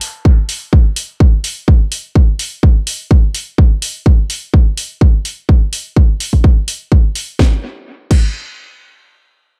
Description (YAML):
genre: piano house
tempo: 126 BPM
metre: 4/4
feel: swing 53% on 16ths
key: none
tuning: none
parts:
  - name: house drum kit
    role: drums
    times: 0.0-8.3 s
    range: crash cymbal, hi-hat, snare drum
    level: -23 LUFS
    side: equal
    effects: none
  - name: electronic kick drum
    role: drums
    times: 0.3-8.3 s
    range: none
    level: -11 LUFS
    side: equal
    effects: none
room: little or no reverb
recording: echo-heavy mix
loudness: -13 LUFS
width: mono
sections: 0.0-7.4 A section; 7.4-9.6 B section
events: none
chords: none